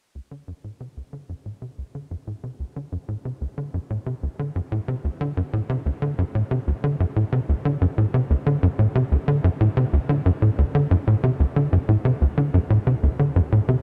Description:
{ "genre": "ambient, sequencer-driven space music", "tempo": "92 BPM", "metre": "4/4", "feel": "straight", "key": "unclear", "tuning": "A4 = 440 Hz", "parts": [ { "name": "tight sequencer bass", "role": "riff", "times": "0.2-13.8 s", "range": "D2 to D3", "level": "-22 LUFS", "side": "equal", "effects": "subtle chorus, delay, shimmer reverb" }, { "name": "warm sub bass", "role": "bass", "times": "10.6-13.8 s", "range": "D2", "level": "-46 LUFS", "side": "equal", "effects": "none" } ], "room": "moderate huge ambient reverb, RT60 8.6 s", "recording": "none", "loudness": "-22 LUFS", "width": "mono", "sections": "0.1-10.6 A section; 10.6-13.8 B section", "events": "fade-in on analog synth bass 0.1-10.6", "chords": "0.1 D5; 10.6 N.C." }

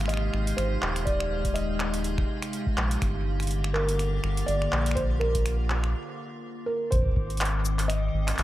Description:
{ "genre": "IDM", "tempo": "123 BPM", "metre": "4/4", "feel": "swing 56% on 16ths", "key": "Ab lydian", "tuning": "A4 = 439 Hz", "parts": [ { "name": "icy glass pad", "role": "sustained chords", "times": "0.0-8.4 s", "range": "C3 to G4", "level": "-33 LUFS", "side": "left 1 dB", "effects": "chorus, built-in reverb, vintage 12-bit sampler grit" }, { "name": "round analog bass", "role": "bass", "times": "0.0-8.4 s", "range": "Eb1 to Bb1", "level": "-27 LUFS", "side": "equal", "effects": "none" }, { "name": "electro analog drum machine", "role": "drums", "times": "0.0-8.4 s", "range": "finger snaps, handclaps, hi-hat, shaker", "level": "-33 LUFS", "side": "equal", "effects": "dub echo" }, { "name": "bubbling stepped-filter texture", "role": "texture", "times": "0.0-8.4 s", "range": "F5 to D6", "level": "-44 LUFS", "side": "right 3 dB", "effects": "chorus, built-in reverb" }, { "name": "felt-muted upright piano", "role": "melody", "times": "0.1-8.4 s", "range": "Bb4 to Eb5", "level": "-32 LUFS", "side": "right 1 dB", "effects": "tape echo" }, { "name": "electronic kick drum", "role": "drums", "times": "1.1-7.3 s", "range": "none", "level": "-29 LUFS", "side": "equal", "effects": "none" } ], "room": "light reverb", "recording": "echo-heavy mix", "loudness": "-24 LUFS", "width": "side -15 dB against mid", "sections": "0.0-6.9 A section; 6.9-8.4 B section", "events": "break 5.9-6.9", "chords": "0.0 Abmaj7; 3.0 Gm7; 5.0 Bb; 6.9 Abmaj7" }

